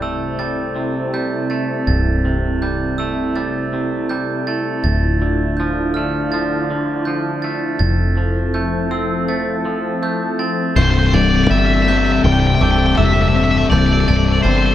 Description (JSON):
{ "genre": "rock", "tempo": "81 BPM", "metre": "4/4", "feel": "straight", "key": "C major", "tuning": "A4 = 438 Hz", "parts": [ { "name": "sweeping resonant pad", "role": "sustained chords", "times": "0.0-14.7 s", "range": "C3 to E5", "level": "-22 LUFS", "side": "right 1 dB", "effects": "chorus" }, { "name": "glockenspiel with hard plastic mallets", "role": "arpeggios", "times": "0.0-14.7 s", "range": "D6 to A6", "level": "-26 LUFS", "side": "right 7 dB", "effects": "slapback echo" }, { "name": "twangy electric guitar", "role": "arpeggios", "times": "0.0-14.7 s", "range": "C2 to C4", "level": "-24 LUFS", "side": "left 1 dB", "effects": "slapback echo" }, { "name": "fingered electric bass", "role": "bass", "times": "0.0-14.7 s", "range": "C1 to G1", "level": "-18 LUFS", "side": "equal", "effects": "none" }, { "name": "overdriven semi-hollow guitar", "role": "melody", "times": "10.8-14.7 s", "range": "C5 to G5", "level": "-19 LUFS", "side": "left 1 dB", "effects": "slapback echo" }, { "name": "thick fuzz guitar", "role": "riff", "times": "10.8-14.7 s", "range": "C2 to C3", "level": "-16 LUFS", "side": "left 6 dB", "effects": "distortion" } ], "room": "light reverb, digital ambience", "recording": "dark, warm production", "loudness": "-15 LUFS", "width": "side -12 dB against mid", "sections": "0.0-10.8 A section; 10.8-14.7 B section", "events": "none", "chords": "0.0 C6; 4.8 Dmadd9; 7.8 Fmaj7; 10.8 C6" }